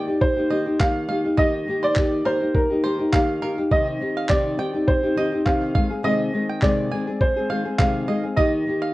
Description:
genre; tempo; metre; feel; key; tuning
acoustic pop; 103 BPM; 4/4; swing 55% on 16ths; Eb major; A4 = 440 Hz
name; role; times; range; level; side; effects
clear upright piano; melody; 0.0-8.9 s; Bb4 to F5; -24 LUFS; right 1 dB; none
nylon-string guitar; accompaniment; 0.0-8.9 s; C3 to Ab4; -22 LUFS; left 1 dB; none
bluegrass banjo; arpeggios; 0.0-8.9 s; Bb4 to Ab5; -30 LUFS; right 3 dB; none
dusty soul sampler-style drum kit; drums; 0.2-8.5 s; handclaps, kick drum; -21 LUFS; equal; none
room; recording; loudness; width
wet studio reverb, RT60 0.8 s; worn, warbling old tape, cassette tape, warbly pitch drift; -19 LUFS; side -18 dB against mid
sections
0.0-8.9 A section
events
none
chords
0.0 Eb; 3.7 Cm; 5.8 Ab/C; 8.4 Eb

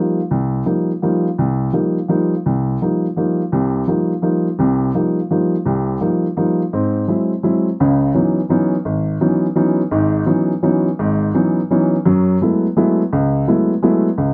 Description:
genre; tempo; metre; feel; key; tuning
jazz; 168 BPM; 3/4; swing 64% on 8ths; F minor, C# minor from 7.8 s; A4 = 441 Hz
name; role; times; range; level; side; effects
warm upright piano; solo; 0.0-14.3 s; G#1 to Fb4; -17 LUFS; equal; none
room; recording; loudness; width
light reverb; dark, warm production; -17 LUFS; mono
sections
0.0-7.8 A section; 7.8-14.3 B section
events
none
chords
0.0 F9sus4; 6.7 Ab7b13; 7.8 C#m11; 12.1 F#m11

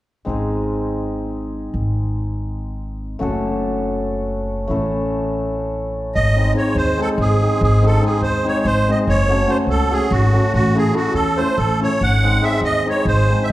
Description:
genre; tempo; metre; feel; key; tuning
balkan folk, Balkan wedding band; 286 BPM (eighths); 7/8; straight; G# phrygian dominant; A4 = 440 Hz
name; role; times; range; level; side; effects
hammered dulcimer; accompaniment; 0.2-13.5 s; G#3 to A4; -21 LUFS; left 1 dB; none
upright bass; bass; 0.3-13.5 s; F#1 to E2; -20 LUFS; equal; none
musette accordion; melody; 6.1-13.5 s; F#4 to F#5; -19 LUFS; right 2 dB; none
room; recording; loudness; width
wet recital hall reverb, RT60 1.4 s; heard from further back in the room; -16 LUFS; side -15 dB against mid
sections
0.3-6.2 A section; 6.2-13.5 B section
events
none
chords
0.3 G#; 3.2 F#m; 4.7 A; 6.2 G#; 9.1 F#m; 10.6 A; 12.0 G#

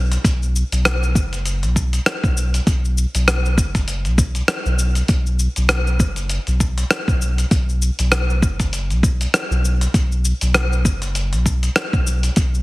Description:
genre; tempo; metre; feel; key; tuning
organic downtempo; 99 BPM; 4/4; swing 57% on 16ths; unclear; A4 = 440 Hz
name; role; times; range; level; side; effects
warm sub bass; bass; 0.0-12.6 s; F#1 to B1; -19 LUFS; equal; sidechain pumping
dusty soul sampler-style drum kit; drums; 0.1-12.6 s; cabasa, hi-hat, rim click; -22 LUFS; equal; none
electronic kick drum; drums; 0.2-12.5 s; none; -17 LUFS; equal; none
room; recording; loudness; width
light reverb; heavily compressed radio sound; -16 LUFS; side -20 dB against mid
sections
0.0-12.6 A section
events
none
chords
none

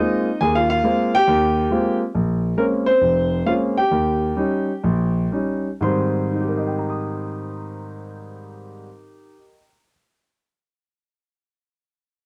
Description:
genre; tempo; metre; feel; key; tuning
solo jazz; 118-139 BPM; 4/4; swing 66% on 8ths; Ab major; A4 = 436 Hz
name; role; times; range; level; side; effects
warm grand piano; solo; 0.0-9.9 s; F1 to Eb6; -21 LUFS; equal; none
room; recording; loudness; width
light reverb; dark, warm production; -20 LUFS; mono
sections
0.0-2.1 A section; 2.1-5.8 B section; 5.8-9.9 C section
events
slowing down 2.1-5.8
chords
0.0 Ab69; 2.1 Bbm9; 3.9 Eb7; 5.8 Abmaj7

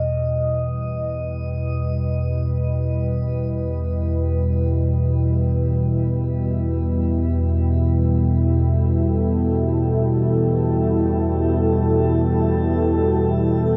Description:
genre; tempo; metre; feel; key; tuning
dark ambient drone; free time; none; none; E harmonic minor; A4 = 440 Hz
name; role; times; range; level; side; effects
dark analog pad; sustained chords; 0.0-13.8 s; G3 to G5; -26 LUFS; equal; chorus, shimmer reverb
analog drone; drone; 0.0-13.8 s; E2 to B2; -22 LUFS; equal; lush chorus
quartz singing bowl; texture; 0.0-13.8 s; D#5; -33 LUFS; equal; shimmer reverb
room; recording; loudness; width
moderate huge ambient reverb, RT60 8.5 s; none; -20 LUFS; mono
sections
0.0-13.8 A section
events
fade-in on analog synth pad 0.0-13.8; filter sweep on synth drone 0.0-13.8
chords
0.0 Em

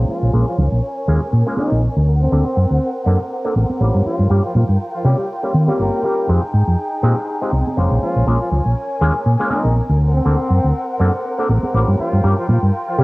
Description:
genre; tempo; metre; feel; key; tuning
filtered disco house; 121 BPM; 4/4; swing 56% on 16ths; unclear; A4 = 440 Hz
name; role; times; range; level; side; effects
auto-wah clav; accompaniment; 0.0-13.0 s; G3 to C5; -22 LUFS; equal; phaser, low-pass filter
rich studio violin section; sustained chords; 0.0-13.0 s; C4 to Ab5; -25 LUFS; left 1 dB; low-pass filter
hollow-body short-scale fingered electric bass; bass; 0.0-13.0 s; F1 to Eb3; -15 LUFS; equal; low-pass filter
clear horn section; melody; 0.1-13.0 s; Eb3 to Bb4; -24 LUFS; equal; low-pass filter, tape echo
tambourine and congas; percussion; 0.1-13.0 s; none; -26 LUFS; right 2 dB; low-pass filter on perc
room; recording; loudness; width
moderate spring reverb, RT60 1.3 s, small room ambience; home recording on cassette; -15 LUFS; side -22 dB against mid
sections
0.0-13.0 A section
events
filter sweep 0.0-13.0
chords
0.1 Bbm7; 2.1 D7b13; 4.1 Gm7b5; 6.3 Fm9; 8.0 Bbm7; 10.0 D7b13; 12.0 Gm7b5

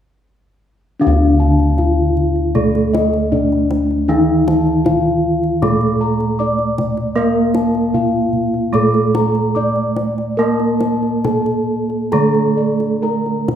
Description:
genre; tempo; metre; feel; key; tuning
Javanese gamelan; 77 BPM; 4/4; uneven beats; D pelog; A4 = 440 Hz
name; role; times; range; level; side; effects
gamelan-type bronze metallophone; melody; 1.0-13.6 s; D4 to D5; -18 LUFS; equal; none
gamelan-type bronze metallophone; accompaniment; 1.0-13.6 s; D3 to Bb3-20c; -19 LUFS; right 2 dB; none
gamelan-type bossed gongs; arpeggios; 1.0-13.5 s; D5 to D6; -23 LUFS; left 3 dB; none
gamelan-type bossed gongs; bass; 1.0-13.6 s; D2 to Bb4-20c; -20 LUFS; left 1 dB; none
kendang; percussion; 1.6-13.6 s; none; -25 LUFS; left 2 dB; none
room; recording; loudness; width
wet recital hall reverb, RT60 1.4 s; recorded in a church or concert hall; -14 LUFS; side -9 dB against mid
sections
1.0-13.6 A section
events
none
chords
none

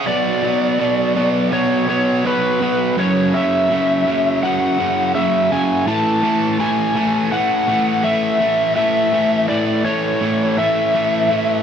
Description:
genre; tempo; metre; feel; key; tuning
rock; 83 BPM; 4/4; straight; unclear; A4 = 440 Hz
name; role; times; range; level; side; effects
overdriven slide guitar; melody; 0.0-11.6 s; B4 to A5; -18 LUFS; left 1 dB; slapback echo
distorted electric guitar; riff; 0.0-11.6 s; F#2 to B3; -18 LUFS; right 1 dB; distortion
room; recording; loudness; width
moderate huge ambient reverb, RT60 4.6 s; none; -15 LUFS; side -8 dB against mid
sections
0.1-11.6 A section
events
none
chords
0.1 Bm; 3.0 F#5; 5.9 A5

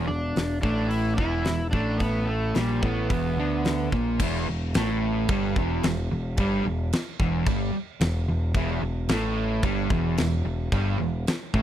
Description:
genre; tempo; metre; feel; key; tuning
blues rock power trio and southern rock; 110 BPM; 4/4; straight; E minor; A4 = 440 Hz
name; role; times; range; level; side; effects
fuzz guitar; riff; 0.0-11.6 s; E2 to D4; -27 LUFS; right 1 dB; distortion
growling picked electric bass; bass; 0.0-11.6 s; E1 to D2; -28 LUFS; equal; overdrive
overdriven slide guitar; melody; 0.1-3.9 s; G3 to E4; -30 LUFS; left 1 dB; none
huge arena drum kit; drums; 0.4-11.6 s; crash cymbal, hi-hat, kick drum, snare drum; -28 LUFS; equal; none
room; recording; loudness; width
studio reverb; dry, close 1970s-style studio recording; -23 LUFS; side -11 dB against mid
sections
0.0-4.2 A section; 4.2-11.6 B section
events
none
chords
0.0 E5; 4.2 Em

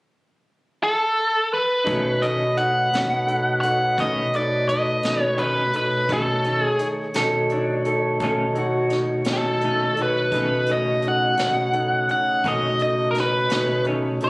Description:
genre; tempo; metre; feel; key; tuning
slow blues; 57 BPM (dotted quarters); 12/8; straight; B mixolydian; A4 = 440 Hz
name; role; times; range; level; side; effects
biting lead guitar; melody; 0.8-14.3 s; A4 to F#5; -21 LUFS; equal; overdrive
clear concert grand piano; accompaniment; 1.8-14.3 s; D#4 to D#5; -30 LUFS; right 1 dB; none
semi-hollow electric guitar; accompaniment; 1.9-14.1 s; B2 to C#4; -30 LUFS; left 1 dB; tremolo
tonewheel organ; sustained chords; 1.9-14.3 s; C#3 to C#5; -31 LUFS; equal; slow rotary speaker, overdrive
mellow bass clarinet; bass; 1.9-14.3 s; B2; -25 LUFS; equal; none
vintage brush drum kit; drums; 1.9-14.3 s; hi-hat, kick drum, snare drum; -31 LUFS; equal; none
electric guitar through a small old amp; second line; 7.2-8.9 s; D4 to A4; -24 LUFS; right 1 dB; digital delay
room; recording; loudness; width
light reverb; recorded on a phone in the room, club reverb, compression; -19 LUFS; side -25 dB against mid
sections
0.0-1.9 A section; 1.9-14.3 B section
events
none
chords
0.0 N.C.; 1.9 B9

